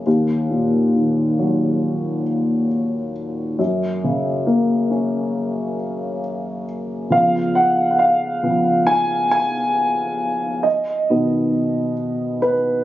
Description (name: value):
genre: pop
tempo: 68 BPM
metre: 4/4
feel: straight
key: unclear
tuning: A4 = 440 Hz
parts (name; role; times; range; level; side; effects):
- dark upright piano; solo; 0.0-12.8 s; Eb2 to Ab5; -17 LUFS; equal; none
room: moderate lush hall reverb, RT60 2.4 s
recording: recorded on a phone in the room, studio ambience, nothing above 7.7 kHz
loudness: -17 LUFS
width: side -14 dB against mid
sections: 0.0-7.1 A section; 7.1-12.8 B section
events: upright piano solo 7.1-12.8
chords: 0.1 Ebm; 3.6 Gb; 7.1 Db7; 10.6 B